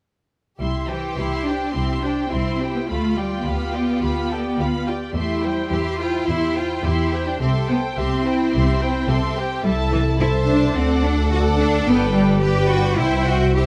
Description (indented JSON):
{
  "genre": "quick classical-period movement for string orchestra",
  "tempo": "107 BPM",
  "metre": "4/4",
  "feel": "rubato",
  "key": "C major, G major from 9.6 s",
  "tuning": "A4 = 439 Hz",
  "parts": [
    { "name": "rich studio violin section", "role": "melody", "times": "0.6-13.7 s", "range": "F#5 to C6", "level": "-32 LUFS", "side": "equal", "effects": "none" },
    { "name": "rich studio violin section", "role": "second line", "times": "0.6-13.7 s", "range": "E4 to C5", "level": "-30 LUFS", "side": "equal", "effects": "none" },
    { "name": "rich studio viola section", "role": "accompaniment", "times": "0.6-13.7 s", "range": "E4 to G5", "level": "-30 LUFS", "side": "equal", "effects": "none" },
    { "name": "bright studio cello section", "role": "bass", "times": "0.6-13.6 s", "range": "E3 to G4", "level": "-25 LUFS", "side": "equal", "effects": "none" },
    { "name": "rich studio double bass section", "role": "bass", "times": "0.6-13.7 s", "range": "G1 to E2", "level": "-25 LUFS", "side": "equal", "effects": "none" }
  ],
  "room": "light reverb",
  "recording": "none",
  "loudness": "-20 LUFS",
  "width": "mono",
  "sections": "0.6-13.7 A section",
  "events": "none",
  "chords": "0.6 C; 2.9 G7/D; 5.2 C/E; 7.4 C; 9.6 Am/C; 10.8 D7; 11.9 G; 13.0 C",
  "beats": "| 0.60 1.17 1.74 2.31 | 2.89 3.46 4.03 4.59 | 5.15 5.71 6.28 6.84 | 7.41 7.97 8.53 9.09 | 9.64 10.20 10.76 11.32 | 11.87 12.43 12.99 13.56"
}